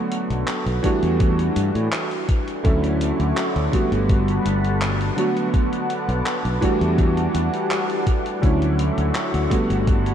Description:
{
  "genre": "vaporwave",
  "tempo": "83 BPM",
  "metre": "4/4",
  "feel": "straight",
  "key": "unclear",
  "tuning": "A4 = 439 Hz",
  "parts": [
    { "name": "warm electric grand piano", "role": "accompaniment", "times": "0.0-10.1 s", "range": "D3 to F#4", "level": "-22 LUFS", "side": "right 1 dB", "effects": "analog chorus, tape echo" },
    { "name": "gated 80s digital drum machine", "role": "drums", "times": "0.1-10.1 s", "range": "handclaps, hi-hat", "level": "-30 LUFS", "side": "left 1 dB", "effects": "gated reverb" },
    { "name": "fretless electric bass", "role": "bass", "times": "0.3-10.1 s", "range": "G1 to A2", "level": "-22 LUFS", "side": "equal", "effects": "none" },
    { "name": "electronic kick drum", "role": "drums", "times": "0.8-10.0 s", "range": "none", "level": "-20 LUFS", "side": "equal", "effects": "none" },
    { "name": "lush unison pad", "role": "sustained chords", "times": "2.9-10.1 s", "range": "G3 to D6", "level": "-28 LUFS", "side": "left 1 dB", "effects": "chorus, phaser" }
  ],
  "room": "moderate huge ambient reverb, RT60 3.9 s",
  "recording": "dreamy mix soaked in reverb, cassette tape",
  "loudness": "-18 LUFS",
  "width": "side -9 dB against mid",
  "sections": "0.0-10.1 A section",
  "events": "none",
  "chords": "0.0 Bm7; 0.8 Em11; 2.6 Dmaj9; 3.7 Gmaj9; 5.2 Bm7; 6.6 Em11; 8.4 Dmaj9; 9.5 Gmaj9",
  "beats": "0.48 1.20 1.93 | 2.65 3.37 4.09 4.82 | 5.54 6.26 6.99 7.71 | 8.43 9.15 9.88"
}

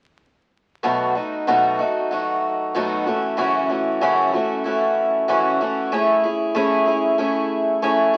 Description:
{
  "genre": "pop",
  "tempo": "94 BPM",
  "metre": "4/4",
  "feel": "straight",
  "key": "B mixolydian",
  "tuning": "A4 = 440 Hz",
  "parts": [
    { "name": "picked twelve-string acoustic guitar", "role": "solo", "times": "0.8-8.2 s", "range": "F#2 to G#4", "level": "-20 LUFS", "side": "equal", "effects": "none" }
  ],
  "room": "light reverb",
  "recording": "very old 78 rpm record, vinyl crackle",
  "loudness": "-20 LUFS",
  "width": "mono",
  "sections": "0.8-8.2 A section",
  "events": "none",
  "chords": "0.8 B7; 3.1 F#m7; 5.9 Amaj7",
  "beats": "| 0.83 1.47 2.11 2.74 | 3.38 4.02 4.65 5.29 | 5.92 6.56 7.19 7.83"
}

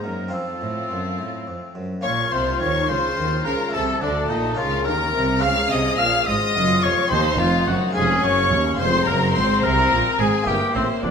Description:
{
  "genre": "classical, baroque-style concerto movement with solo episodes",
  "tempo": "71 BPM (dotted quarters)",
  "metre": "6/8",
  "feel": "straight",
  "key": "Bb minor",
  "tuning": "A4 = 440 Hz",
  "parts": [
    { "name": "rich chamber violin section", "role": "melody", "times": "0.0-11.1 s", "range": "C5 to F6", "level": "-26 LUFS", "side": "left 3 dB", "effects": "none" },
    { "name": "warm oboe", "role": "melody", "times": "0.0-11.1 s", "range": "C4 to F5", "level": "-24 LUFS", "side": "left 2 dB", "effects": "none" },
    { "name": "rich chamber violin section", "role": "second line", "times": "0.0-11.1 s", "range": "C4 to F5", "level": "-26 LUFS", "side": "left 1 dB", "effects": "none" },
    { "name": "harpsichord", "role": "accompaniment", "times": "0.0-11.1 s", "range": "Eb2 to Ab4", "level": "-28 LUFS", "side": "equal", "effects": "none" },
    { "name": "rich chamber viola section", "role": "accompaniment", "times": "0.0-11.1 s", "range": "Bb3 to Bb4", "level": "-28 LUFS", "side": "left 4 dB", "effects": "none" },
    { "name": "warm chamber cello section", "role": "bass", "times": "0.0-11.1 s", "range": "Eb2 to Eb3", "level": "-26 LUFS", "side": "right 3 dB", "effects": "none" },
    { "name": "clear chamber double bass section", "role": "bass", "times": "2.0-11.1 s", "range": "F1 to Eb2", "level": "-26 LUFS", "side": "right 3 dB", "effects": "none" }
  ],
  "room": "wet recital hall reverb, RT60 1.6 s",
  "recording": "minimal, uncompressed stereo recording",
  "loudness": "-18 LUFS",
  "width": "side -6 dB against mid",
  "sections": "0.0-2.0 A section; 2.0-11.1 B section",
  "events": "none",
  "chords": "0.3 F; 2.0 Bbm; 3.7 Adim/C; 4.6 Bbm/Db; 5.4 Db; 7.1 Cdim; 8.0 Db/F; 8.8 Fm; 10.5 Edim/G",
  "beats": "| 0.33 1.19 | 2.05 2.89 | 3.74 4.58 | 5.42 6.27 | 7.11 7.95 | 8.79 9.63 | 10.47"
}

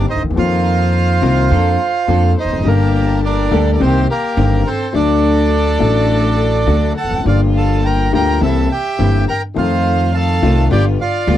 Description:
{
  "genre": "tango",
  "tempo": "105 BPM",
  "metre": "4/4",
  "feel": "rubato",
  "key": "G minor",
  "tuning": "A4 = 443 Hz",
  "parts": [
    { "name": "bandoneon", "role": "melody", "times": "0.0-11.4 s", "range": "Bb3 to Bb5", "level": "-19 LUFS", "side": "right 4 dB", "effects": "none" },
    { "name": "warm violin", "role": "second line", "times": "0.0-11.4 s", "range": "G4 to G5", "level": "-24 LUFS", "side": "left 4 dB", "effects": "none" },
    { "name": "dark grand piano", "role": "accompaniment", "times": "0.0-11.4 s", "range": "G1 to Bb4", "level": "-17 LUFS", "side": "left 7 dB", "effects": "none" },
    { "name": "rich symphonic string section", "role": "stabs", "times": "0.0-11.4 s", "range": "G3 to A5", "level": "-26 LUFS", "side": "right 3 dB", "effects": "none" },
    { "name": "upright bass", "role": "bass", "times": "0.0-11.4 s", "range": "E1 to F2", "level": "-16 LUFS", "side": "right 1 dB", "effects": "none" }
  ],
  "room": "light reverb",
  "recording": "dry, close 1970s-style studio recording",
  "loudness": "-12 LUFS",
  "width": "side -12 dB against mid",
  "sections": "0.0-11.4 A section",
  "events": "none",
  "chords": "0.4 F7sus4; 1.5 Bbmaj7/F; 2.7 Gmadd9; 3.8 Cm7; 4.9 D; 7.3 Gm7; 8.4 C7; 9.6 F7; 10.7 G7",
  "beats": "| 0.37 0.94 1.52 2.09 | 2.66 3.23 3.80 4.38 | 4.95 5.52 6.09 6.67 | 7.26 7.85 8.42 9.00 | 9.57 10.14 10.71 11.28"
}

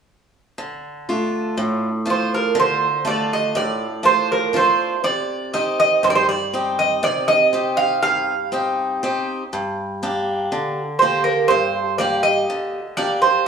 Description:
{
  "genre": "greek folk, Greek bouzouki band",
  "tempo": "121 BPM (eighths)",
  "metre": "9/8",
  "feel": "straight",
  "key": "D phrygian",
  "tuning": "A4 = 441 Hz",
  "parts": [
    { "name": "picked swing-style acoustic guitar", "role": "accompaniment", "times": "0.6-13.5 s", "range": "G2 to G4", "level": "-22 LUFS", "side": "left 1 dB", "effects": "none" },
    { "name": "Greek bouzouki", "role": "melody", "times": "2.1-13.5 s", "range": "Bb4 to F5", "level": "-17 LUFS", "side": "right 3 dB", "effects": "none" }
  ],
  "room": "wet stone room reverb, RT60 1.1 s",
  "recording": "band playing live in one room",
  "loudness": "-17 LUFS",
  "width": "side -6 dB against mid",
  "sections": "0.6-13.5 A section",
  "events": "none",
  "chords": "0.6 Dm; 5.1 Cm; 9.5 Gm",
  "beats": "| 0.59 1.09 1.58 2.08 2.58 3.07 3.57 4.06 4.56 | 5.05 5.55 6.05 6.54 7.04 7.53 8.03 8.53 9.02 | 9.52 10.01 10.51 11.00 11.49 11.99 12.48 12.98 13.47"
}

